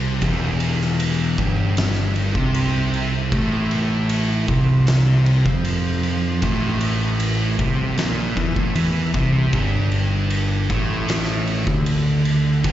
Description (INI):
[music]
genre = stoner and doom metal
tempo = 77 BPM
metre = 4/4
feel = straight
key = unclear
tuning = A4 = 439 Hz
[part]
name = thick fuzz guitar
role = riff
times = 0.0-12.7 s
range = E2 to F3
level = -24 LUFS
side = left 6 dB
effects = distortion
[part]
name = thick fuzz guitar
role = riff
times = 0.0-12.7 s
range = E2 to F3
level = -22 LUFS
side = right 5 dB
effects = distortion
[part]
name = growling picked electric bass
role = bass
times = 0.0-12.7 s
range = E1 to F2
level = -23 LUFS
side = equal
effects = overdrive
[part]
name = oversized low-tuned drum kit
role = drums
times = 0.2-12.7 s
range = kick drum, ride cymbal, snare drum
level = -25 LUFS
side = equal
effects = none
[sound]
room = little or no reverb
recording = live gig heard through the venue's PA, recital hall reverb, nothing above 7.7 kHz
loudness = -17 LUFS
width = side -12 dB against mid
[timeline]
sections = 0.0-12.7 A section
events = none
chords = 0.0 Em; 3.3 A5; 9.5 G5